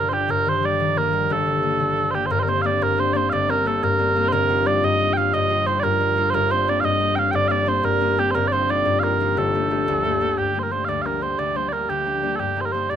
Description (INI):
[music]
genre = celtic folk, Celtic jig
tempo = 119 BPM (dotted quarters)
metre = 6/8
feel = straight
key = G minor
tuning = A4 = 440 Hz
[part]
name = mellow small bagpipes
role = melody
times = 0.0-13.0 s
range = G4 to G5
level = -20 LUFS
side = right 4 dB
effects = none
[part]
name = concert harp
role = accompaniment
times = 0.0-13.0 s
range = G1 to G4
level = -23 LUFS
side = left 4 dB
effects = none
[sound]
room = light reverb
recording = close, detailed microphones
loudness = -18 LUFS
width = side -9 dB against mid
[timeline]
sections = 0.0-2.3 A section; 2.3-10.4 A section; 10.4-13.0 B section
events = none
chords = 0.3 Eb/G; 1.3 Gmadd9; 2.3 Bbadd9/G; 4.3 Ebadd9/G; 9.4 Gmadd9; 10.4 Gm; 12.4 Eb/G